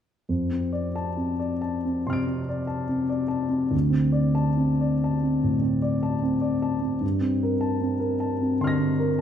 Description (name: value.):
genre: classical, impressionist solo piano.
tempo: 66-80 BPM.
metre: 4/4.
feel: rubato.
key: F major.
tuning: A4 = 440 Hz.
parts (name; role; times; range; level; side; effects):
warm grand piano; solo; 0.3-9.2 s; D2 to D7; -22 LUFS; equal; none.
room: wet recital hall reverb, RT60 1.4 s.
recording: minimal, uncompressed stereo recording.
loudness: -22 LUFS.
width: side -9 dB against mid.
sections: 0.3-9.2 A section.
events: none.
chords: 0.3 F6; 3.7 D5; 7.0 Gm11.